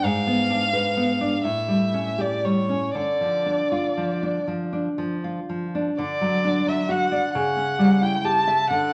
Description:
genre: romantic duo for violin and classical guitar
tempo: 38-45 BPM (dotted quarters)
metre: 6/8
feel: rubato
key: D minor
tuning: A4 = 440 Hz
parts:
  - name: rich violin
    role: melody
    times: 0.0-8.9 s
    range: C#5 to A5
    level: -26 LUFS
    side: equal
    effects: none
  - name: nylon-string guitar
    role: accompaniment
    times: 0.0-8.9 s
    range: G#2 to E5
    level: -25 LUFS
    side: equal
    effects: none
room: moderate large studio reverb, RT60 1.2 s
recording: none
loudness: -23 LUFS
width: mono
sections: 0.0-6.0 A section; 6.0-8.9 B section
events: none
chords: 0.0 G#dim7; 1.4 A7; 2.9 Dm; 6.0 D; 7.3 C#dim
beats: | 0.04 1.44 | 2.94 4.47 | 5.98 7.35 | 8.69

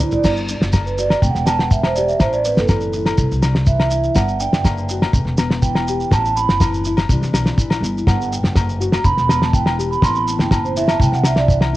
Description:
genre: highlife guitar band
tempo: 123 BPM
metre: 4/4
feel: straight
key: G major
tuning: A4 = 441 Hz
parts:
  - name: nylon-string guitar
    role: accompaniment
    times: 0.0-11.8 s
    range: E2 to G4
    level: -26 LUFS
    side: left 4 dB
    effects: cassette tape
  - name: vibraphone with soft mallets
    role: arpeggios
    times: 0.0-11.8 s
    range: E4 to C6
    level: -20 LUFS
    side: right 4 dB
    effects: cassette tape, tape echo
  - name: upright bass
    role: bass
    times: 0.0-11.8 s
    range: E1 to D2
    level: -21 LUFS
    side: equal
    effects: none
  - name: cloth-damped thuddy drum kit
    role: drums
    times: 0.0-11.7 s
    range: crash cymbal, kick drum, snare drum, toms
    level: -17 LUFS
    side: equal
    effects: cassette tape
  - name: shekere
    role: percussion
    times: 0.1-11.6 s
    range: none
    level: -23 LUFS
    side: equal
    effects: none
  - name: agogo bells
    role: percussion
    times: 0.2-11.7 s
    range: none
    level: -28 LUFS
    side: left 6 dB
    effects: none
room: light reverb, small room ambience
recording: home recording on cassette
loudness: -15 LUFS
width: side -16 dB against mid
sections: 0.2-11.8 A section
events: drum fill 0.0; vibraphone solo 0.2-11.8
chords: 0.2 G5; 1.2 Em; 2.2 Amadd9; 3.2 Cadd9; 4.2 G5; 5.1 Em; 6.1 Amadd9; 7.1 Cadd9; 8.1 Gmaj7(no3); 9.0 Em; 10.0 Amadd9; 11.0 Cadd9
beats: | 0.24 0.73 1.22 1.71 | 2.20 2.69 3.18 3.67 | 4.16 4.65 5.14 5.63 | 6.12 6.60 7.09 7.58 | 8.07 8.56 9.05 9.54 | 10.03 10.52 11.00 11.49

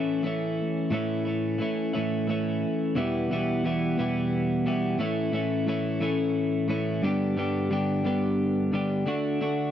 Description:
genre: rock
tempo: 59 BPM (dotted quarters)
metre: 6/8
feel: straight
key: unclear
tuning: A4 = 439 Hz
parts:
  - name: twelve-string electric guitar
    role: solo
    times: 0.0-9.7 s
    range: E2 to G4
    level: -24 LUFS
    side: equal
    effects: none
room: light reverb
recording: dry, close 1970s-style studio recording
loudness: -24 LUFS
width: side -10 dB against mid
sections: 0.0-3.0 A section; 3.0-9.7 B section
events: none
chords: 0.0 A; 3.0 Em; 5.0 A; 7.0 G; 9.1 D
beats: | 0.92 1.94 | 2.96 3.98 | 5.00 6.01 | 7.03 8.05 | 9.07

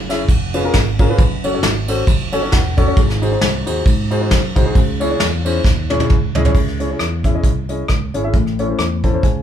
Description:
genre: uptempo gospel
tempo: 134 BPM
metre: 4/4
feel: swing 56% on 8ths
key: C# harmonic minor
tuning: A4 = 445 Hz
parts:
  - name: dark upright piano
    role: accompaniment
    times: 0.0-9.4 s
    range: G#2 to A5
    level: -20 LUFS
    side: left 2 dB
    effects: none
  - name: fingered electric bass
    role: bass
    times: 0.0-9.4 s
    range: E1 to G#2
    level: -22 LUFS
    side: right 1 dB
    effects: none
  - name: soft brush drum kit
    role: drums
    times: 0.1-9.4 s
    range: crash cymbal, hi-hat, kick drum, ride cymbal, rim click, snare drum, toms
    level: -16 LUFS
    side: right 1 dB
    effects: none
room: light reverb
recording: band playing live in one room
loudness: -14 LUFS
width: side -10 dB against mid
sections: 0.0-6.5 A section; 6.5-9.4 B section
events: upright piano fill 2.1-3.0, 8.8-9.4; drum fill 5.7-6.5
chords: 0.3 C#7/E#; 1.2 F#m; 3.0 G#7; 4.8 C#m; 8.3 A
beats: 0.29 0.74 | 1.18 1.63 2.08 2.52 | 2.97 3.42 3.87 4.31 | 4.76 5.21 5.65 6.10 | 6.55 6.99 7.44 7.89 | 8.34 8.79 9.24

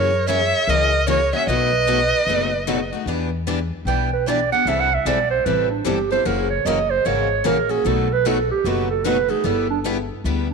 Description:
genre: acoustic string swing (jazz manouche)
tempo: 150 BPM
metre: 4/4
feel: swing 63% on 8ths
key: E minor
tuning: A4 = 440 Hz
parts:
  - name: warm violin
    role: melody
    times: 0.0-2.9 s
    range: C#5 to E5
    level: -19 LUFS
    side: equal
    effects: none
  - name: breathy clarinet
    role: second line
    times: 0.0-10.5 s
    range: D4 to G5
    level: -21 LUFS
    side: right 8 dB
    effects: none
  - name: picked steel-string acoustic guitar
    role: accompaniment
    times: 0.0-10.5 s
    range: B2 to A4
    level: -25 LUFS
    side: left 14 dB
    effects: none
  - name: picked steel-string acoustic guitar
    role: accompaniment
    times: 0.0-10.5 s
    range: B2 to B4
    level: -30 LUFS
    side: right 10 dB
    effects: none
  - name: upright bass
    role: bass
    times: 0.0-10.5 s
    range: F#1 to F#2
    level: -25 LUFS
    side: left 2 dB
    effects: none
room: moderate echo chamber reverb, RT60 2.2 s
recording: 1960s-style stereo with parts hard left and right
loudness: -17 LUFS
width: side -5 dB against mid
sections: 0.0-3.1 A section; 3.1-10.5 B section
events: clarinet solo 3.1-10.5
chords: 0.0 F#7; 1.5 B7; 3.1 Em7; 4.7 C6; 6.3 F#7; 7.9 B7; 9.5 G6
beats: 0.28 0.68 1.07 | 1.47 1.87 2.27 2.67 | 3.07 3.46 3.86 4.26 | 4.66 5.06 5.46 5.86 | 6.26 6.66 7.06 7.46 | 7.86 8.26 8.65 9.05 | 9.45 9.85 10.25

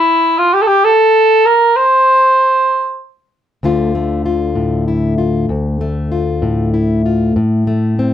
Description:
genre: folk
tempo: 64 BPM (dotted quarters)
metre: 6/8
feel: straight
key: D minor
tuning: A4 = 440 Hz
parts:
  - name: mellow cor anglais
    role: melody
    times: 0.0-3.0 s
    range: E4 to C5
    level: -8 LUFS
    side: right 1 dB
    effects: slapback echo
  - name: fingerpicked plugged-in steel-string acoustic guitar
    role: accompaniment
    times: 3.6-8.1 s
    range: D2 to F4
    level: -13 LUFS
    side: left 2 dB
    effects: none
room: little or no reverb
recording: dry, close 1970s-style studio recording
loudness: -11 LUFS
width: side -10 dB against mid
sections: 0.0-3.6 A section; 3.6-8.1 B section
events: none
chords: 0.0 N.C.; 3.6 Dmadd9; 7.4 Am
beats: 0.85 | 1.77 2.70 | 3.63 4.56 | 5.49 6.42 | 7.36

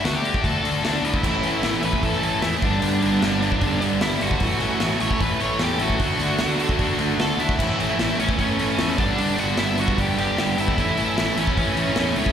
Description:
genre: punk rock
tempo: 151 BPM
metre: 4/4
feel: straight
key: A mixolydian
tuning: A4 = 440 Hz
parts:
  - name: high-gain lead guitar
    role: melody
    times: 0.0-12.3 s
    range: C#4 to C#6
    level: -26 LUFS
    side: equal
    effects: distortion
  - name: distorted electric guitar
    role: riff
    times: 0.0-12.3 s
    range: G2 to F#4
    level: -25 LUFS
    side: left 9 dB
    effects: overdrive, slapback echo
  - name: fuzz picked electric bass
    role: bass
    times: 0.0-12.3 s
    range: G1 to E2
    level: -28 LUFS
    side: equal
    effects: overdrive
  - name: big rock drum kit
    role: drums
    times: 0.1-12.3 s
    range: crash cymbal, hi-hat, kick drum, snare drum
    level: -26 LUFS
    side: equal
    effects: none
  - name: cranked stack guitar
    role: riff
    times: 1.2-12.3 s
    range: G2 to D4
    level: -25 LUFS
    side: right 11 dB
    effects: overdrive
room: small room reverb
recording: live gig heard through the venue's PA, recital hall reverb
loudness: -19 LUFS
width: side -8 dB against mid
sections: 0.0-12.3 A section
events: none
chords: 0.0 D; 1.2 A; 2.6 G; 4.4 A; 6.0 D; 7.6 A; 9.0 G; 10.8 A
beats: 0.05 0.45 0.84 | 1.24 1.64 2.03 2.43 | 2.83 3.23 3.62 4.02 | 4.42 4.81 5.21 5.61 | 6.01 6.41 6.80 7.20 | 7.60 8.00 8.39 8.79 | 9.19 9.59 9.99 10.38 | 10.78 11.18 11.58 11.97

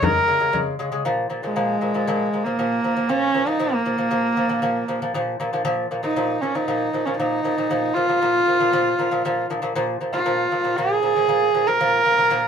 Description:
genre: mongolian traditional, Mongolian folk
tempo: 117 BPM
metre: 4/4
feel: straight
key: Bb yu mode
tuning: A4 = 441 Hz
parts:
  - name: clear horsehead fiddle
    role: melody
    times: 0.0-12.5 s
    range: Ab3 to Bb4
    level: -20 LUFS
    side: right 1 dB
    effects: none
  - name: lute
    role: arpeggios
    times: 0.0-12.5 s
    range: Bb2 to Ab3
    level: -24 LUFS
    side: left 1 dB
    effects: none
  - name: frame drum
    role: percussion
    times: 0.0-0.7 s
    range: none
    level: -24 LUFS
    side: left 3 dB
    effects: none
room: moderate studio reverb, RT60 0.5 s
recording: band playing live in one room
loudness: -19 LUFS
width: side -7 dB against mid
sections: 0.0-1.1 A section; 1.1-12.5 B section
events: none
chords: 0.0 Db5; 1.1 Bb5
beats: 0.03 0.54 | 1.05 1.56 2.07 2.58 | 3.10 3.61 4.12 4.63 | 5.14 5.65 6.17 6.68 | 7.19 7.70 8.21 8.73 | 9.24 9.75 10.26 10.78 | 11.29 11.80 12.31

